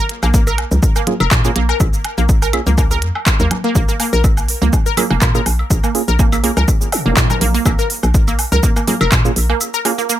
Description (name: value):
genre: minimal techno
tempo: 123 BPM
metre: 4/4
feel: swing 54% on 16ths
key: Bb minor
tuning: A4 = 440 Hz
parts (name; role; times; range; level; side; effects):
- resonant blip pluck; riff; 0.0-10.1 s; Bb3 to Bb4; -20 LUFS; right 1 dB; chorus, sidechain pumping, dub echo
- minimal click drum kit; drums; 0.1-10.2 s; handclaps, hi-hat, shaker; -21 LUFS; right 1 dB; none
- hollow knocking FM bass; bass; 0.2-9.5 s; F1 to Bb2; -17 LUFS; equal; sidechain pumping
- woodblock, congas and claves; percussion; 0.2-10.0 s; none; -24 LUFS; equal; dub echo
- electronic kick drum; drums; 0.3-9.2 s; none; -14 LUFS; equal; none
- percussive organ stab; stabs; 1.1-9.9 s; Bb3 to Ab4; -25 LUFS; right 4 dB; chorus, dub echo
- zap; sound effects; 6.9-7.1 s; none; -24 LUFS; equal; none
room: little or no reverb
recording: none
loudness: -12 LUFS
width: side -12 dB against mid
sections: 0.0-10.2 A section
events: break 9.6-10.2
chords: 0.0 Bbm7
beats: 0.34 0.83 1.31 | 1.80 2.29 2.78 3.27 | 3.75 4.24 4.73 5.22 | 5.70 6.19 6.68 7.17 | 7.66 8.14 8.63 9.12 | 9.61 10.09